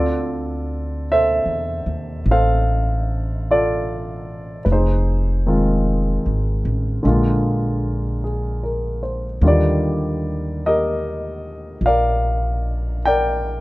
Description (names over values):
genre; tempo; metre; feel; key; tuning
jazz ballad; 50 BPM; 4/4; swing 67% on 8ths; D minor; A4 = 441 Hz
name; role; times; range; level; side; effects
warm grand piano; accompaniment; 0.0-13.6 s; D3 to G5; -20 LUFS; equal; none
upright bass; bass; 0.0-13.6 s; F1 to E2; -21 LUFS; equal; none
room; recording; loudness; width
little or no reverb; close, detailed microphones; -18 LUFS; side -19 dB against mid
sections
0.0-13.6 A section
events
none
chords
0.0 Dm9; 4.6 Fm7; 7.0 Bb7; 9.4 Ebmaj9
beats
1.05 2.25 3.45 | 4.64 5.84 7.03 8.23 | 9.42 10.61 11.81 13.00